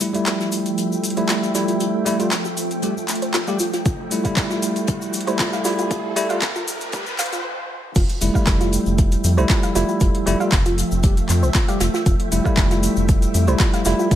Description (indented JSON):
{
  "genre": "deep house",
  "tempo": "117 BPM",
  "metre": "4/4",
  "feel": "swing 53% on 16ths",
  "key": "F major",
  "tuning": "A4 = 440 Hz",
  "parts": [
    { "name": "soft string machine", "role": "sustained chords", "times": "0.0-14.2 s", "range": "F3 to G5", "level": "-27 LUFS", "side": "equal", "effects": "phaser, ensemble chorus, vintage 12-bit sampler grit, sidechain pumping" },
    { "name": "bell-like tine electric piano", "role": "stabs", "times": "0.0-14.2 s", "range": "G3 to G4", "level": "-22 LUFS", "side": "equal", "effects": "medium stereo tremolo, sidechain pumping, tape echo" },
    { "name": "deep house drum kit", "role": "drums", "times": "0.0-14.2 s", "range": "crash cymbal, handclaps, hi-hat", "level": "-26 LUFS", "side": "equal", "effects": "overdrive, studio reverb" },
    { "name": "jazz brush drum kit", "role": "drums", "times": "0.0-14.2 s", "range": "hi-hat, snare drum", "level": "-32 LUFS", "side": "left 2 dB", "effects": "sidechain pumping on hats, high-pass filter on hats, studio reverb, high-pass filter on snare, high-pass filter on room" },
    { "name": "cabasa", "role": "percussion", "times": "0.0-14.2 s", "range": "none", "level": "-31 LUFS", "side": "left 4 dB", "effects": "none" },
    { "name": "riser and noise sweep", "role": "sound effects", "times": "0.0-8.0 s", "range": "none", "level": "-34 LUFS", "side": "right 1 dB", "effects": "none" },
    { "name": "soft round pluck", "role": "arpeggios", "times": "0.1-14.2 s", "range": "F4 to F5", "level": "-28 LUFS", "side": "right 2 dB", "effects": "chorus, sidechain pumping, dub echo" },
    { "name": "electronic kick drum", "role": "drums", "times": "3.9-14.2 s", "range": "none", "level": "-19 LUFS", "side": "equal", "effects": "overdrive, studio reverb" },
    { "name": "round analog bass", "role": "bass", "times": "8.0-14.2 s", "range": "F1 to F2", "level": "-20 LUFS", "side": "equal", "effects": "sidechain pumping" }
  ],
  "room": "light reverb, small room reverb",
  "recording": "high-pass filter",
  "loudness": "-17 LUFS",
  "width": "side -11 dB against mid",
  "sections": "0.0-8.0 A section; 8.0-14.2 B section",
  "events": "build-up 0.0-8.0; riser 0.0-7.4; filter sweep on synth arpeggio sound 0.0-8.0; noise sweep 5.9-8.0; stop 7.4-8.0; drop 8.0-14.2",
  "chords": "0.0 Fmaj9"
}